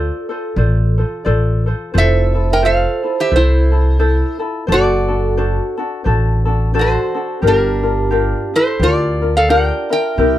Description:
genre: Hawaiian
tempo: 88 BPM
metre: 4/4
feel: swing 60% on 8ths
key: F major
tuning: A4 = 440 Hz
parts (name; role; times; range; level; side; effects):
- metal-body resonator slide guitar; melody; 0.0-10.4 s; D4 to G5; -18 LUFS; equal; none
- vibraphone with soft mallets; second line; 0.0-10.4 s; G4 to E5; -22 LUFS; right 7 dB; none
- ukulele; accompaniment; 0.0-10.4 s; C4 to D5; -20 LUFS; left 4 dB; none
- upright bass; bass; 0.0-10.4 s; F1 to D2; -16 LUFS; equal; none
room: light reverb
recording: dry, close 1970s-style studio recording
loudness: -13 LUFS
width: side -13 dB against mid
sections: 0.0-1.9 A section; 1.9-10.4 B section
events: none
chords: 0.0 Dm7; 1.9 Fmaj7; 4.7 D7/F#; 7.4 Gm7

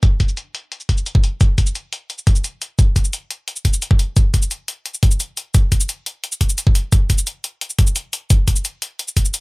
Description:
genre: drum and bass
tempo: 174 BPM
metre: 4/4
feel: straight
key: none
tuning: none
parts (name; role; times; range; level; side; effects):
- electronic hi-hat and cabasa; drums; 0.0-9.4 s; none; -23 LUFS; left 1 dB; low-pass filter on snare, low-pass filter on hats, low-pass filter on perc
- electronic kick drum; drums; 0.0-9.2 s; none; -14 LUFS; equal; none
room: little or no reverb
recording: none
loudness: -16 LUFS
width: side -26 dB against mid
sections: 0.0-9.4 A section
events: none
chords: none

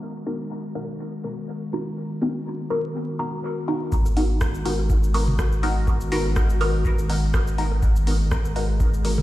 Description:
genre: dub techno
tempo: 123 BPM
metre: 4/4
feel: swing 55% on 16ths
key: G# minor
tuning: A4 = 440 Hz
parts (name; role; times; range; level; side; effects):
- warbly tape-like pad; sustained chords; 0.0-9.2 s; D#3 to G#4; -30 LUFS; left 1 dB; chorus, built-in reverb, sidechain pumping
- filtered dub chord stab; stabs; 0.3-9.1 s; B3 to A#4; -28 LUFS; equal; phaser, sidechain pumping, dub echo
- pure sine sub bass; bass; 3.9-9.2 s; G#1; -24 LUFS; equal; sidechain pumping
- booming analog drum machine; drums; 3.9-9.2 s; cabasa, hi-hat, rim click; -34 LUFS; equal; dub echo
- electronic kick drum; drums; 3.9-8.9 s; none; -23 LUFS; equal; none
- electronic bongos and toms; percussion; 4.1-9.2 s; none; -33 LUFS; right 1 dB; sidechain pumping on perc, sidechain pumping on toms
room: light reverb, digital ambience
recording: played on a big sound system in a bare room, stone room reverb, vinyl crackle, low-pass filter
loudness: -21 LUFS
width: side -16 dB against mid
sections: 0.0-3.9 A section; 3.9-9.2 B section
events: filter sweep on synth stab 0.0-3.9, 3.9-9.2; filter sweep on ambient pad 0.0-3.9; filter sweep 0.0-3.9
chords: 0.0 G#m7

